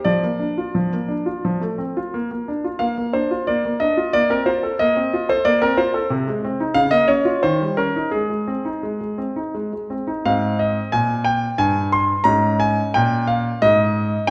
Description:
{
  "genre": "classical-period piano sonatina",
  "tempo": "84-93 BPM",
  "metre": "3/4",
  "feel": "rubato",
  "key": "Bb major, Ab major from 6.1 s",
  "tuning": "A4 = 445 Hz",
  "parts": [
    { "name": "clear concert grand piano", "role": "solo", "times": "0.0-14.3 s", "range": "G2 to C6", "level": "-20 LUFS", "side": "equal", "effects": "none" }
  ],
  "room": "wet recital hall reverb, RT60 1.4 s",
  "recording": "none",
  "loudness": "-20 LUFS",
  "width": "mono",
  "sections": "0.0-10.2 A section; 10.2-14.3 B section",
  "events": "none",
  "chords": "0.1 Bb/F; 1.4 F; 2.1 Bb; 4.1 F/Bb; 6.1 Ab/C; 6.8 Bbm/Db; 7.4 Eb7; 8.1 Ab; 12.3 Bbm7/Ab"
}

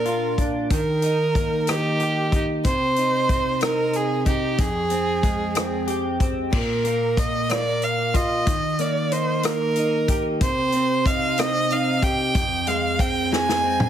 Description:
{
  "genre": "six-eight pop ballad",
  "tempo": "62 BPM (dotted quarters)",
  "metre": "6/8",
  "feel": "straight",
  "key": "Eb major",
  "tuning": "A4 = 438 Hz",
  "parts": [
    { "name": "warm violin", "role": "melody", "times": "0.0-13.9 s", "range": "G4 to Ab5", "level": "-23 LUFS", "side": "right 2 dB", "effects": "none" },
    { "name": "direct-recorded clean electric guitar", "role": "accompaniment", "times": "0.0-13.9 s", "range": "F2 to G4", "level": "-24 LUFS", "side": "equal", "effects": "double-tracked left and right" },
    { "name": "natural country drum kit", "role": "drums", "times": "0.1-13.9 s", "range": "crash cymbal, hi-hat, kick drum, rim click, snare drum, toms", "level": "-24 LUFS", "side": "left 1 dB", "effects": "none" }
  ],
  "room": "light reverb, studio ambience",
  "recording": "heavily compressed radio sound",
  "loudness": "-19 LUFS",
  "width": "side -10 dB against mid",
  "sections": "0.0-6.5 A section; 6.5-13.9 B section",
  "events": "drum fill 13.3-13.9",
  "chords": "0.0 Bb; 0.7 Eb; 2.6 Cm; 4.6 Fmadd9; 6.5 Bb5; 8.5 Eb; 10.4 Cm; 12.3 Fmadd9"
}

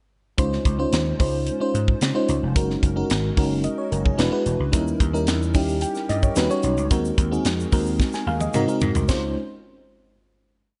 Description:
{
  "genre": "polished 1980s jazz-funk pop",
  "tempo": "110 BPM",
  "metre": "4/4",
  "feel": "straight",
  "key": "Db major",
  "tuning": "A4 = 442 Hz",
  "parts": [
    { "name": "FM electric piano with soft pad layer", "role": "accompaniment", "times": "0.4-9.3 s", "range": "G3 to Ab5", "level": "-26 LUFS", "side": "equal", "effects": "tremolo, analog chorus" },
    { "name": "vintage slap bass", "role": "bass", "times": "0.4-9.3 s", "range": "E1 to Db3", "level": "-27 LUFS", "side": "equal", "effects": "none" },
    { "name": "tight funk drum kit", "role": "drums", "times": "0.4-9.2 s", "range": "hi-hat, kick drum, snare drum, splash cymbal, toms", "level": "-26 LUFS", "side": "equal", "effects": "gated reverb" },
    { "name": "tube shaker", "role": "percussion", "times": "4.7-9.3 s", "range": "none", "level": "-42 LUFS", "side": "equal", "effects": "none" }
  ],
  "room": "studio ambience",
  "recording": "nothing above 10.9 kHz, faint mains hum",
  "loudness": "-22 LUFS",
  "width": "mono",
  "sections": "0.4-9.1 verse; 9.1-10.8 final chord",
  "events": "drum fill 8.0-9.1",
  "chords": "0.4 Dbmaj7; 2.6 Gb69; 4.2 E9; 4.7 Eb7b9; 6.4 Eb7alt; 6.9 Ab7/Eb; 8.5 Ab7; 9.1 Dbmaj7"
}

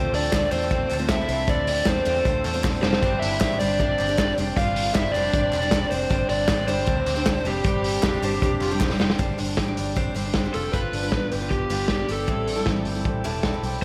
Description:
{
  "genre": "jangly indie pop",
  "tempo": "156 BPM",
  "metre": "4/4",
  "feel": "straight",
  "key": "G mixolydian",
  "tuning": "A4 = 440 Hz",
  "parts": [
    { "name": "lead guitar through a small cranked amp", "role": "melody", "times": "0.0-13.8 s", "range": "G4 to F5", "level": "-28 LUFS", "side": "equal", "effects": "overdrive, slapback echo" },
    { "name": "warm studio violin section", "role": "second line", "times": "0.0-8.8 s", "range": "G3 to F4", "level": "-37 LUFS", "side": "equal", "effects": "slapback echo" },
    { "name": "picked steel-string acoustic guitar", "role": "accompaniment", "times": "0.0-13.8 s", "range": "A2 to C5", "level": "-34 LUFS", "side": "equal", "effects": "slapback echo" },
    { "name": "electric guitar through a small old amp", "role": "arpeggios", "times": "0.0-13.8 s", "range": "F3 to A4", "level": "-33 LUFS", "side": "equal", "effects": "slapback echo" },
    { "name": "vintage muted fingered electric bass", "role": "bass", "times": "0.0-13.8 s", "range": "E1 to E2", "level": "-33 LUFS", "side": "equal", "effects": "none" },
    { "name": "vintage drum kit", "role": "drums", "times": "0.1-13.8 s", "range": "hi-hat, kick drum, snare drum", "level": "-27 LUFS", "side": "equal", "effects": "none" },
    { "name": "group handclap", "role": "percussion", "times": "0.3-8.9 s", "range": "none", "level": "-42 LUFS", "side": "equal", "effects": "none" }
  ],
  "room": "moderate lush hall reverb, RT60 2.0 s",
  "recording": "big arena sound",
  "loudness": "-23 LUFS",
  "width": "mono",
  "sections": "0.0-9.2 A section; 9.2-10.7 B section; 10.7-13.8 C section",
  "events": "drum fill 2.6-3.0, 8.8-9.2",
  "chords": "0.0 Dm7; 3.0 Gsus4; 10.7 G7; 12.3 Am7"
}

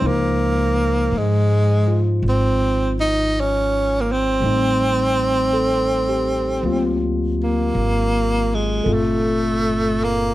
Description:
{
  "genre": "jazz ballad",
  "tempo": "54 BPM",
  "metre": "4/4",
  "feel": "swing 67% on 8ths",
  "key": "unclear",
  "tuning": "A4 = 439 Hz",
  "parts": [
    { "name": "breathy tenor saxophone", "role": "melody", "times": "0.0-10.3 s", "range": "Ab3 to Eb4", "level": "-19 LUFS", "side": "right 1 dB", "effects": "plate reverb" },
    { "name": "barky tine electric piano", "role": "accompaniment", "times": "0.0-10.3 s", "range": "Bb2 to C5", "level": "-24 LUFS", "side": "left 2 dB", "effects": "none" },
    { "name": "upright bass", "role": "bass", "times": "0.0-10.3 s", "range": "G1 to Ab2", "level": "-22 LUFS", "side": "equal", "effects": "none" }
  ],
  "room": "light reverb",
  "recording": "none",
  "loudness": "-17 LUFS",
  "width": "side -15 dB against mid",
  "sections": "0.0-10.3 A section",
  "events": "none",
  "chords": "0.0 Dbmaj9; 4.4 Am7b5; 6.6 D7alt; 8.9 Gm11"
}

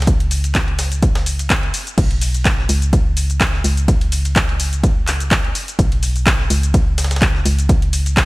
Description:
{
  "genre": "piano house",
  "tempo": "126 BPM",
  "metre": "4/4",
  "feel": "swing 55% on 16ths",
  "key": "unclear",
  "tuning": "A4 = 440 Hz",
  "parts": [
    { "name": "organ-like FM bass", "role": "bass", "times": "0.0-8.3 s", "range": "B1 to C#2", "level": "-18 LUFS", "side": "equal", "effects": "sidechain pumping" },
    { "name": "breakbeat sampler-style drum kit", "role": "drums", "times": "0.0-8.3 s", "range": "hi-hat, ride cymbal, snare drum", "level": "-31 LUFS", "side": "right 1 dB", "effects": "sidechain pumping on cymbals, high-pass filter on cymbals, high-pass filter on snare, sidechain pumping on hats, high-pass filter on hats, high-pass filter on room" },
    { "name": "electronic kick drum", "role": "drums", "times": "0.1-8.3 s", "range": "none", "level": "-16 LUFS", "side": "equal", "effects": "none" },
    { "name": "punchy analog drum machine", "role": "drums", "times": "0.1-8.3 s", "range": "crash cymbal, handclaps, hi-hat, shaker", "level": "-20 LUFS", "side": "equal", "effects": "none" }
  ],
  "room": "little or no reverb",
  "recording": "bright 1980s-style digital production",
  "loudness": "-14 LUFS",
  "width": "side -22 dB against mid",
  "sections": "0.0-8.3 A section",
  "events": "none",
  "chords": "none"
}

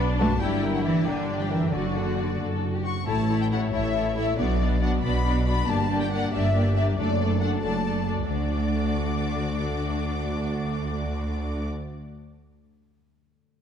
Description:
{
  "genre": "cinematic",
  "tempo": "92 BPM (dotted quarters)",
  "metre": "6/8",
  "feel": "straight",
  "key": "D major",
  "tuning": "A4 = 440 Hz",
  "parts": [
    { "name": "rich symphonic violin section", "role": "second line", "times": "0.0-11.7 s", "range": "D4 to G5", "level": "-34 LUFS", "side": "left 3 dB", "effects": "none" },
    { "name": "clear symphonic viola section", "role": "accompaniment", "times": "0.0-11.7 s", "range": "A3 to F#4", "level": "-31 LUFS", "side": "left 1 dB", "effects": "none" },
    { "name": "concert harp", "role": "arpeggios", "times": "0.0-12.5 s", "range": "F#2 to F#5", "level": "-32 LUFS", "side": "left 9 dB", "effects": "none" },
    { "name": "warm symphonic double bass section", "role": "bass", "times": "0.0-11.7 s", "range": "F#1 to D2", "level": "-27 LUFS", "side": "right 1 dB", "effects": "none" },
    { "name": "warm symphonic violin section", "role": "melody", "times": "0.2-11.7 s", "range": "D5 to D6", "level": "-32 LUFS", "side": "left 5 dB", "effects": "none" },
    { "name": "rich symphonic cello section", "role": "bass", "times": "0.2-11.7 s", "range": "D2 to A3", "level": "-29 LUFS", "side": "right 2 dB", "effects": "none" }
  ],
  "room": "moderate scoring stage reverb, RT60 1.6 s",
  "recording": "dark, warm production",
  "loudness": "-23 LUFS",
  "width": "side -8 dB against mid",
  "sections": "0.0-3.1 A section; 3.1-8.3 B section; 8.3-10.9 C section",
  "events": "none",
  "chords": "0.4 Gm; 1.7 D/F#; 3.1 A; 4.4 Bm; 5.7 Gm; 7.0 D/F#; 8.3 D"
}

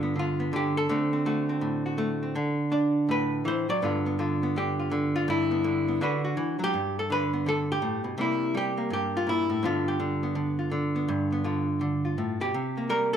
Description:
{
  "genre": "solo jazz",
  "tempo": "165 BPM",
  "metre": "4/4",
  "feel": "swing 63% on 8ths",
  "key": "G mixolydian",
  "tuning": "A4 = 440 Hz",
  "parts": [
    { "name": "archtop guitar, miked and amplified", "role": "solo", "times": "0.0-13.2 s", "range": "G2 to D5", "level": "-25 LUFS", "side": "equal", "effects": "none" }
  ],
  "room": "wet large studio reverb, RT60 1.3 s",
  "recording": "none",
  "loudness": "-25 LUFS",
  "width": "side -8 dB against mid",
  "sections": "0.0-6.7 A section; 6.7-13.2 B section",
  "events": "hollow-body jazz guitar solo 0.0-6.7",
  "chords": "0.0 G7; 0.9 D7; 3.8 G7; 6.0 D69; 6.7 G; 8.2 C7; 9.6 G7; 12.5 C5"
}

